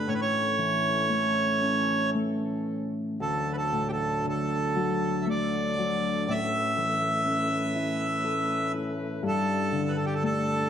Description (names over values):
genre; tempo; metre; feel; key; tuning
celtic folk, Celtic slow air; 56-61 BPM; 3/4; rubato; D major; A4 = 440 Hz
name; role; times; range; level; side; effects
accordion; melody; 0.0-10.7 s; G4 to E5; -27 LUFS; right 2 dB; none
Celtic harp; accompaniment; 0.0-10.7 s; D2 to A4; -29 LUFS; left 2 dB; none
clear brass ensemble; sustained chords; 0.0-10.7 s; E3 to B4; -34 LUFS; right 1 dB; none
room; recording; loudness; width
moderate recital hall reverb, RT60 1.5 s; none; -25 LUFS; side -8 dB against mid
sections
0.0-3.2 A section; 3.2-10.7 B section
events
none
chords
0.1 A; 3.2 D; 6.3 Aadd9; 9.2 Gsus2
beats
| 0.07 1.08 2.14 | 3.20 4.24 5.27 | 6.29 7.27 8.26 | 9.24 10.23